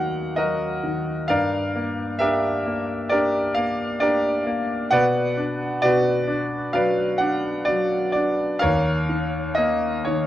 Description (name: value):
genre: classical, lyrical solo piano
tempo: 60-67 BPM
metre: 4/4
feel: rubato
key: unclear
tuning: A4 = 442 Hz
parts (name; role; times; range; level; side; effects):
- clear concert grand piano; solo; 0.0-10.3 s; Eb2 to Gb5; -20 LUFS; equal; none
room: moderate recital hall reverb, RT60 1.6 s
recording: worn, warbling old tape, cassette tape, warbly pitch drift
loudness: -20 LUFS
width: side -13 dB against mid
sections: 0.0-10.3 A section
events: none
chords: 0.0 Ebmadd9; 1.3 Gm; 4.9 Bm; 8.6 Eb7(no3)